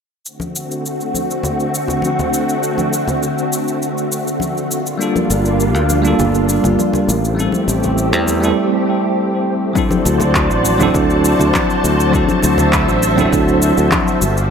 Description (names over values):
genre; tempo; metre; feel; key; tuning
sunset chillout; 101 BPM; 4/4; straight; unclear; A4 = 439 Hz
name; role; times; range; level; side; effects
soft string machine; sustained chords; 0.4-14.5 s; D3 to A5; -18 LUFS; equal; ensemble chorus
electronic shaker and handclaps; drums; 0.3-14.5 s; none; -22 LUFS; equal; overdrive
congas; percussion; 0.4-14.0 s; none; -24 LUFS; left 2 dB; none
bell-like tine electric piano; accompaniment; 5.0-14.2 s; F#3 to A4; -17 LUFS; moving between left 4 dB and right 5 dB; fast stereo tremolo, auto-pan, ping-pong delay
modern bright fingered electric bass; bass; 5.3-14.5 s; G1 to E2; -17 LUFS; equal; none
electronic kick drum; drums; 9.8-14.0 s; none; -22 LUFS; equal; overdrive
room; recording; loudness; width
moderate plate reverb, RT60 1.6 s; dreamy mix soaked in reverb; -13 LUFS; side -6 dB against mid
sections
0.3-9.8 A section; 9.8-14.5 B section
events
none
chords
0.3 D7; 4.7 Gm7; 7.1 Am7; 9.8 D7